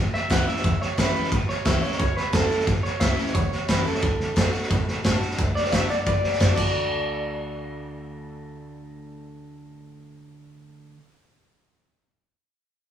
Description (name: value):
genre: rockabilly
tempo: 177 BPM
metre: 4/4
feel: straight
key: D major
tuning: A4 = 441 Hz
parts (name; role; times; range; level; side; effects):
- picked steel-string acoustic guitar; accompaniment; 0.0-11.0 s; E2 to F#4; -31 LUFS; left 2 dB; none
- upright bass; bass; 0.0-10.9 s; A1 to A2; -28 LUFS; right 1 dB; none
- electric guitar through a small old amp; melody; 0.1-10.9 s; A4 to F#5; -27 LUFS; right 1 dB; slapback echo
- raw garage drum kit; drums; 0.1-6.7 s; crash cymbal, hi-hat, kick drum, snare drum; -24 LUFS; equal; none
room: light reverb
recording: band playing live in one room, small room ambience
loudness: -21 LUFS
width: side -9 dB against mid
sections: 0.0-5.4 A section; 5.4-6.7 B section; 6.7-9.5 C section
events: none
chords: 0.0 A; 4.0 D